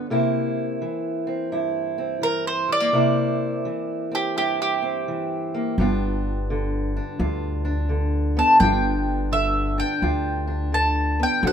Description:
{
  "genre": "acoustic country blues, solo or duo",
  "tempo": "85 BPM",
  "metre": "4/4",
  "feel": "swing 65% on 8ths",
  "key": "unclear",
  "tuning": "A4 = 440 Hz",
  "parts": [
    { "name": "fingerpicked steel-string acoustic guitar", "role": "accompaniment", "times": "0.0-11.5 s", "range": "G2 to F#4", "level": "-25 LUFS", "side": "right 1 dB", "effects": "none" },
    { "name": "mandolin", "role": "melody", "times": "2.2-11.5 s", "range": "G4 to A5", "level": "-22 LUFS", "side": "equal", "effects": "none" },
    { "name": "upright bass", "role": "bass", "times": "5.8-11.5 s", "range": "G1 to D2", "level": "-24 LUFS", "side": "equal", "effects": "none" }
  ],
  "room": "light reverb",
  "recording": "minimal, uncompressed stereo recording",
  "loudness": "-20 LUFS",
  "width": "side -8 dB against mid",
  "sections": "0.0-11.5 A section",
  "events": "none",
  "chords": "0.1 C7; 5.8 G7",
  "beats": "| 0.08 0.80 1.51 2.22 | 2.94 3.65 4.36 5.07 | 5.78 6.49 7.20 7.90 | 8.61 9.32 10.03 10.73 | 11.44"
}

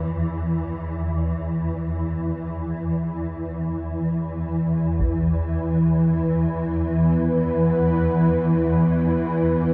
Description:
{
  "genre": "dark ambient drone",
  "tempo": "free time",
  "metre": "none",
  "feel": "none",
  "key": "unclear",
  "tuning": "A4 = 440 Hz",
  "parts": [
    { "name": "swarming drone", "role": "drone", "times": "0.0-9.7 s", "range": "E2 to E3", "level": "-24 LUFS", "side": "equal", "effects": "built-in reverb, ensemble chorus" },
    { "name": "sweeping resonant pad", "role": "sustained chords", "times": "5.0-9.7 s", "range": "E3 to B4", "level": "-24 LUFS", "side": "equal", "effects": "chorus" },
    { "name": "taiko ensemble", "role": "percussion", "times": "5.0-5.2 s", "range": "none", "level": "-32 LUFS", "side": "equal", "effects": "low-pass filter on perc" }
  ],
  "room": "wet huge ambient reverb, RT60 8.6 s",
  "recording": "dreamy mix soaked in reverb, cassette tape",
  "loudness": "-22 LUFS",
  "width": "mono",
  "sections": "0.0-9.7 A section",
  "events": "none",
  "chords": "0.0 E5",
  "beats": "free time"
}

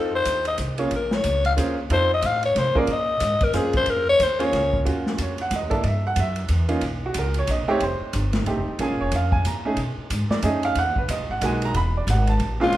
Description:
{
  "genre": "jazz, small-group swing and bop",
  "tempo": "183 BPM",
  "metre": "3/4",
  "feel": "swing 61% on 8ths",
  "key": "Bb minor",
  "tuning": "A4 = 442 Hz",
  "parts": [
    { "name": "growling alto saxophone", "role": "melody", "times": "0.0-4.8, 12.6-12.8 s", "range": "F4 to F5", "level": "-21 LUFS", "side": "left 2 dB", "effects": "none" },
    { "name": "clear upright piano", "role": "accompaniment", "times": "0.0-12.7 s", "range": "Bb2 to B5", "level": "-25 LUFS", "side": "right 2 dB", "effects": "none" },
    { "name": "upright bass", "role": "bass", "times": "0.0-12.8 s", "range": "Eb1 to C3", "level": "-25 LUFS", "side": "equal", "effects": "none" },
    { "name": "open jazz drum kit", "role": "drums", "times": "0.3-12.8 s", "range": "hi-hat, kick drum, ride cymbal, snare drum", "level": "-29 LUFS", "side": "equal", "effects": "none" }
  ],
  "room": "moderate recital hall reverb, RT60 1.4 s",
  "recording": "recorded in a church or concert hall",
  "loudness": "-20 LUFS",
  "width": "side -14 dB against mid",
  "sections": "0.0-4.9 A section; 4.9-12.7 A section",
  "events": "alto saxophone solo 0.0-4.9",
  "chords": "0.0 F7; 0.9 Bbm9; 1.9 F7; 2.9 Bbm9; 4.9 Ebm9; 5.8 Em69; 6.8 Bmaj9; 7.8 F7; 8.8 Bbm7; 9.8 B13; 10.8 Emaj9#11 (rootless); 11.7 E; 12.4 F",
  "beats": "0.26 0.59 | 0.92 1.24 1.57 | 1.90 2.23 2.56 | 2.89 3.21 3.54 | 3.87 4.20 4.53 | 4.86 5.18 5.51 | 5.84 6.17 6.50 | 6.82 7.15 7.48 | 7.81 8.14 8.46 | 8.79 9.12 9.45 | 9.78 10.10 10.43 | 10.76 11.09 11.41 | 11.74 12.07 12.40 | 12.73"
}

